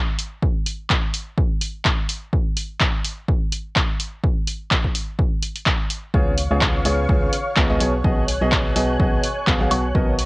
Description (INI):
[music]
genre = piano house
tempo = 126 BPM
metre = 4/4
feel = swing 55% on 16ths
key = G# dorian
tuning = A4 = 445 Hz
[part]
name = punchy analog drum machine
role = drums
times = 0.2-10.3 s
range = handclaps, hi-hat, woodblock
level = -22 LUFS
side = equal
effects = cassette tape
[part]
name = electronic kick drum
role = drums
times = 0.4-10.1 s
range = none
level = -21 LUFS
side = equal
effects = cassette tape
[part]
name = analog string pad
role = sustained chords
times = 6.1-10.3 s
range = C#5 to F#6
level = -28 LUFS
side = equal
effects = ensemble chorus, sidechain pumping
[part]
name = clear grand piano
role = riff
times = 6.1-10.1 s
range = B2 to E#5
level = -22 LUFS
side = equal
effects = sidechain pumping, analog delay
[part]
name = organ-like FM bass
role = bass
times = 6.1-10.3 s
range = B1 to C#2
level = -24 LUFS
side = equal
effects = tube saturation, sidechain pumping
[sound]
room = light reverb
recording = home recording on cassette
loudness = -18 LUFS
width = side -24 dB against mid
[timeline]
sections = 0.0-10.3 A section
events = none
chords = 0.0 N.C.; 6.1 C#7; 7.8 G#m7/B